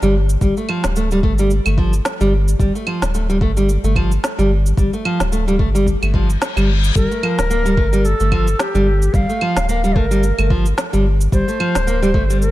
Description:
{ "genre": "organic downtempo", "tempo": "110 BPM", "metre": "4/4", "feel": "swing 56% on 16ths", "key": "unclear", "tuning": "A4 = 440 Hz", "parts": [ { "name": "nylon-string guitar", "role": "arpeggios", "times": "0.0-12.4 s", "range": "F3 to Bb3", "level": "-19 LUFS", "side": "right 1 dB", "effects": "ping-pong delay" }, { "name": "warm sub bass", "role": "bass", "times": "0.0-12.5 s", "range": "D1 to G1", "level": "-17 LUFS", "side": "equal", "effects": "sidechain pumping" }, { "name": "electronic cabasa, claves and snare drum", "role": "drums", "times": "0.0-12.5 s", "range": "none", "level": "-24 LUFS", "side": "right 1 dB", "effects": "overdrive" }, { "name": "electronic kick drum", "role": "drums", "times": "0.4-12.3 s", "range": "none", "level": "-19 LUFS", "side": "equal", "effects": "overdrive" }, { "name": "reverse cymbal", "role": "sound effects", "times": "6.2-7.0 s", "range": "none", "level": "-27 LUFS", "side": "left 6 dB", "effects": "none" }, { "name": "bright reedy Native American-style cedar flute", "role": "melody", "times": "7.0-12.5 s", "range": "G4 to F5", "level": "-22 LUFS", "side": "left 1 dB", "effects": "ping-pong delay" } ], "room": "light reverb, digital ambience", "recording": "dark, warm production", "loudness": "-14 LUFS", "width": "side -16 dB against mid", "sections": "0.0-12.5 A section", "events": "reverse cymbal 6.2-7.0", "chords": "0.0 F; 7.0 Gm7" }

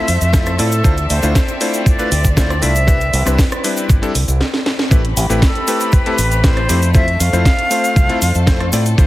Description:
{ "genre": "nu-disco, nu disco", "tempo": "118 BPM", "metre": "4/4", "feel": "straight", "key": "unclear", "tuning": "A4 = 441 Hz", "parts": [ { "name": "bright silver concert flute", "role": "melody", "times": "0.0-8.7 s", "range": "A4 to F5", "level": "-20 LUFS", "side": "equal", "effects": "tape echo" }, { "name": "bright electric grand piano", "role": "accompaniment", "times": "0.0-9.1 s", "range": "G3 to D5", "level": "-21 LUFS", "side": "left 2 dB", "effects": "sidechain pumping" }, { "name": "warm chamber violin section", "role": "sustained chords", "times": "0.0-9.1 s", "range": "A3 to B5", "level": "-25 LUFS", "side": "left 1 dB", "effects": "sidechain pumping" }, { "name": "fingered electric bass with an envelope filter", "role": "bass", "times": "0.1-9.1 s", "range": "G1 to A2", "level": "-16 LUFS", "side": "equal", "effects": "none" }, { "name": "house drum kit", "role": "drums", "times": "0.1-9.1 s", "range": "cabasa, hi-hat, rim click, snare drum", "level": "-21 LUFS", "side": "right 1 dB", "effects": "overdrive" }, { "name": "cabasa", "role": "percussion", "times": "0.2-9.1 s", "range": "none", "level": "-30 LUFS", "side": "left 1 dB", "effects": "none" }, { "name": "electronic kick drum", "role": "drums", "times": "0.3-9.1 s", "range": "none", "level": "-13 LUFS", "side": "equal", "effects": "none" } ], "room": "light reverb", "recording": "heavily compressed radio sound", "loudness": "-12 LUFS", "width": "side -16 dB against mid", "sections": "0.0-4.9 A section; 4.9-9.1 B section", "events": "drum fill 4.4-4.9; band accent 4.8; drop 4.9-9.1", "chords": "0.0 Fmaj7; 0.8 Dm9; 2.9 Cmaj9; 4.9 Am9; 6.9 Fmaj7" }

